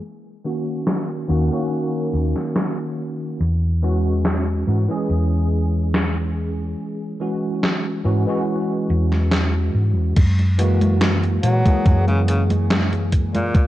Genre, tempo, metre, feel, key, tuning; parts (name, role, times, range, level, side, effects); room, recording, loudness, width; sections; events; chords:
vaporwave; 71 BPM; 4/4; straight; A4 = 440 Hz
tine electric piano; accompaniment; 0.4-13.5 s; D#3 to G#4; -23 LUFS; equal; medium stereo tremolo, ensemble chorus, vintage 12-bit sampler grit, analog delay
gated 80s digital drum machine; drums; 0.9-13.7 s; congas, crash cymbal, hi-hat, snare drum; -23 LUFS; equal; gated reverb, gated reverb snare, low-pass filter on hats, studio reverb, low-pass filter on perc, low-pass filter on cymbals, low-pass filter on snare
hollow-body short-scale fingered electric bass; bass; 1.3-13.5 s; D#2 to A#2; -19 LUFS; equal
electronic kick drum; drums; 10.2-13.7 s; -15 LUFS; equal; studio reverb
breathy tenor saxophone; melody; 11.4-13.6 s; A#2 to F#3; -24 LUFS; equal; vintage 12-bit sampler grit, tape echo
light reverb, digital ambience; cassette tape, low-pass filter; -18 LUFS; side -14 dB against mid
0.0-10.2 A section; 10.2-13.7 B section
filter sweep on drum 0.0-10.2; filter sweep 0.0-10.2
0.0 D#m7; 3.4 E69; 10.2 F#9